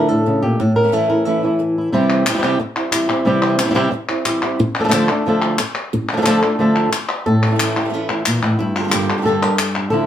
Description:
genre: flamenco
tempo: 180 BPM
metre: 4/4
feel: straight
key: unclear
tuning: A4 = 441 Hz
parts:
  - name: flamenco guitar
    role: melody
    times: 0.0-10.1 s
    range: G2 to Bb4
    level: -16 LUFS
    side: left 1 dB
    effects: none
  - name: flamenco guitar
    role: stabs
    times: 0.0-10.1 s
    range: G2 to A4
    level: -21 LUFS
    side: right 3 dB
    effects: none
  - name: palmas hand claps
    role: percussion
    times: 2.1-9.9 s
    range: none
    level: -21 LUFS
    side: left 3 dB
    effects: none
room: moderate studio reverb, RT60 0.6 s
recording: band playing live in one room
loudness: -15 LUFS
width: side -10 dB against mid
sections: 0.0-1.9 A section; 1.9-7.3 B section; 7.3-10.1 C section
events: none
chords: 0.0 Dmadd9; 0.6 A; 1.9 C; 4.6 Dm; 7.3 A; 8.6 Gmadd9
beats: 0.26 | 0.60 0.93 1.26 1.60 | 1.93 2.26 2.60 2.93 | 3.26 3.60 3.93 4.26 | 4.60 4.93 5.26 5.60 | 5.93 6.27 6.60 6.93 | 7.26 7.60 7.93 8.26 | 8.60 8.93 9.26 9.60 | 9.93

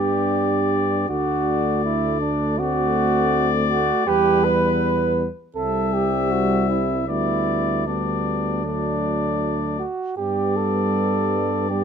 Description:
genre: classical, brass quintet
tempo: 80 BPM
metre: 4/4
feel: straight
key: G major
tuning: A4 = 442 Hz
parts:
  - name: clear trumpet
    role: melody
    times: 0.0-11.8 s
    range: B4 to E5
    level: -26 LUFS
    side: left 9 dB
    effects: none
  - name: mellow flugelhorn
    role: second line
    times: 0.0-11.8 s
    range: D4 to B4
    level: -23 LUFS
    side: right 6 dB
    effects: none
  - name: mellow French horn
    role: accompaniment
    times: 0.0-11.8 s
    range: A3 to D4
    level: -28 LUFS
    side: left 7 dB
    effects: none
  - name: mellow euphonium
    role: accompaniment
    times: 0.0-11.8 s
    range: F#3 to B3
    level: -28 LUFS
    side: right 2 dB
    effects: none
  - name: mellow bass trombone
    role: bass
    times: 0.0-11.8 s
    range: C2 to G2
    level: -26 LUFS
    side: right 1 dB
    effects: none
room: light reverb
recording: close, detailed microphones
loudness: -19 LUFS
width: side -7 dB against mid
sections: 0.0-11.8 A section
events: none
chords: 0.0 G; 1.1 D; 2.6 D7; 4.1 Em; 5.6 C6; 7.1 G/D; 8.6 D; 10.2 G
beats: 0.35 | 1.10 1.85 2.59 3.33 | 4.08 4.82 5.57 6.33 | 7.09 7.87 8.64 9.42 | 10.18 10.95 11.71

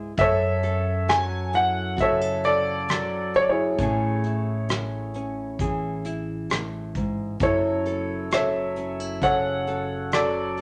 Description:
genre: acoustic folk-pop ballad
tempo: 66 BPM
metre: 4/4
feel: straight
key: F# minor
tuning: A4 = 438 Hz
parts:
  - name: nylon-string guitar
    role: accompaniment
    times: 0.0-10.6 s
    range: F#2 to A4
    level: -33 LUFS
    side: equal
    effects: none
  - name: upright bass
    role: bass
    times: 0.0-10.6 s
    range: F#1 to F#2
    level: -34 LUFS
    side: equal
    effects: none
  - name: warm concert grand piano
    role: melody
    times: 0.2-10.6 s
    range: E4 to G#5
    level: -26 LUFS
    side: equal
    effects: none
  - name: soft brush drum kit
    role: drums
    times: 0.2-10.6 s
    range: hi-hat, kick drum, rim click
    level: -30 LUFS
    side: equal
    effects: none
room: moderate studio reverb, RT60 0.7 s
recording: none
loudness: -25 LUFS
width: mono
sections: 0.0-10.6 A section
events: none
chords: 0.2 F#m7; 3.8 Amaj7; 7.4 F#m7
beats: | 0.17 1.08 1.98 2.88 | 3.79 4.69 5.59 6.50 | 7.41 8.32 9.22 10.13

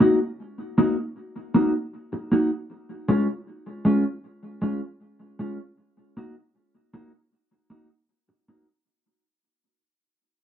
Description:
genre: reggae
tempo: 78 BPM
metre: 4/4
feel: straight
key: Eb minor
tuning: A4 = 442 Hz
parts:
  - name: mellow electric guitar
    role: accompaniment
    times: 0.0-8.7 s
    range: Ab3 to Gb4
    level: -21 LUFS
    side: equal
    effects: lush chorus
room: wet studio reverb, RT60 0.6 s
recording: rough home demo mix, nothing above 7.8 kHz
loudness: -23 LUFS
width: side -9 dB against mid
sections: 0.0-8.9 A section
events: fade-out 0.0-8.9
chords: 0.0 Ebm; 2.7 Db; 5.8 Ebm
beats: 0.40 1.17 1.94 | 2.71 3.48 4.25 5.01 | 5.79 6.55 7.33 8.09

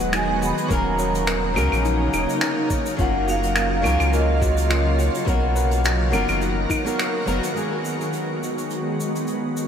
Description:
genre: sunset chillout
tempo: 105 BPM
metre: 4/4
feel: swing 56% on 16ths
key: unclear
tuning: A4 = 440 Hz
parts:
  - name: flamenco guitar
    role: accompaniment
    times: 0.0-9.7 s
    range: F#3 to A#4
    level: -26 LUFS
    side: equal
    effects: auto-pan, ping-pong delay
  - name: shimmering ambient pad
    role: sustained chords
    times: 0.0-9.7 s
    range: C#3 to A#4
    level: -26 LUFS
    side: equal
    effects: chorus, built-in reverb
  - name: soft round pluck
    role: arpeggios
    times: 0.0-7.5 s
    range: D#4 to C#5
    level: -32 LUFS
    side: left 2 dB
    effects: none
  - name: warm sub bass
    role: bass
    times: 0.0-7.4 s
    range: D#1 to C#2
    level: -23 LUFS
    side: equal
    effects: none
  - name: soft brush drum kit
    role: drums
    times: 0.0-9.7 s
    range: claves, finger snaps, hi-hat, shaker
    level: -28 LUFS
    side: left 1 dB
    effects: none
  - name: vibraphone with medium mallets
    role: melody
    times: 0.2-7.0 s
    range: C#5 to B5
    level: -28 LUFS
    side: equal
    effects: ping-pong delay
  - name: electronic kick drum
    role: drums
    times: 0.7-6.8 s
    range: none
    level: -25 LUFS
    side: equal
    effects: none
room: wet huge ambient reverb, RT60 8.5 s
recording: dreamy mix soaked in reverb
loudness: -19 LUFS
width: side -8 dB against mid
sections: 0.0-7.6 A section; 7.6-9.7 B section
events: kick drops out 7.0-7.6; filter sweep on ambient pad 7.6-9.7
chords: 0.0 G#m7; 0.7 D#m7; 3.0 F#maj7; 5.3 Bmaj7; 7.6 G#m7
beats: 0.13 | 0.70 1.28 1.85 2.42 | 2.99 3.56 4.13 4.70 | 5.28 5.85 6.42 6.99 | 7.56 8.13 8.70 9.28

